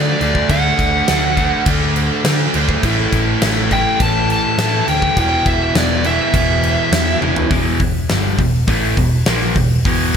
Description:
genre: hard rock.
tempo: 103 BPM.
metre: 4/4.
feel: straight.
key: E minor.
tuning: A4 = 440 Hz.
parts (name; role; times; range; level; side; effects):
smooth overdriven lead guitar; melody; 0.0-7.2 s; D5 to A5; -19 LUFS; equal; none.
crunchy overdriven guitar; riff; 0.0-10.2 s; E2 to D4; -18 LUFS; equal; none.
hollow-body short-scale picked electric bass; bass; 0.0-10.2 s; E1 to D3; -20 LUFS; equal; none.
huge arena drum kit; drums; 0.2-10.2 s; crash cymbal, hi-hat, kick drum, snare drum, toms; -19 LUFS; equal; none.
room: light reverb, studio ambience.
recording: bright 1980s-style digital production.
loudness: -13 LUFS.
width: side -7 dB against mid.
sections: 0.0-7.5 A section; 7.5-10.2 B section.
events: drum fill 7.2.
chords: 0.0 D; 2.8 A5; 5.2 E5; 7.5 Em.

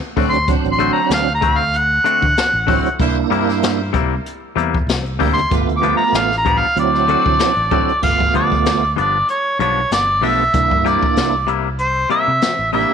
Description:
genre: straight-eighth soul blues.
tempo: 96 BPM.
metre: 4/4.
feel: swing 55% on 16ths.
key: unclear.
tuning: A4 = 440 Hz.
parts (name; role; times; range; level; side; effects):
jazz brush drum kit; drums; 0.0-12.9 s; crash cymbal, hi-hat, kick drum, snare drum; -21 LUFS; left 2 dB; none.
tonewheel organ; accompaniment; 0.2-12.9 s; F#3 to G4; -21 LUFS; right 15 dB; slow rotary speaker, overdrive, chorus vibrato.
twangy electric guitar; stabs; 0.2-12.9 s; G2 to F#4; -22 LUFS; left 12 dB; none.
fingered electric bass; bass; 0.2-12.8 s; G1 to D3; -23 LUFS; equal; none.
mellow harmonica; melody; 0.3-12.9 s; C5 to D6; -16 LUFS; right 1 dB; overdrive.
bright horn section; sustained chords; 0.5-7.8 s; D4 to C5; -30 LUFS; equal; none.
room: light reverb, studio reverb.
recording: 1960s-style stereo with parts hard left and right.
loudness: -14 LUFS.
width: side -7 dB against mid.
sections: 0.0-8.0 A section; 8.0-12.9 B section.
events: harmonica solo 0.0-8.0.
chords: 0.0 D7; 3.0 C7; 5.5 G7; 6.8 D7; 8.0 G7; 10.5 C7.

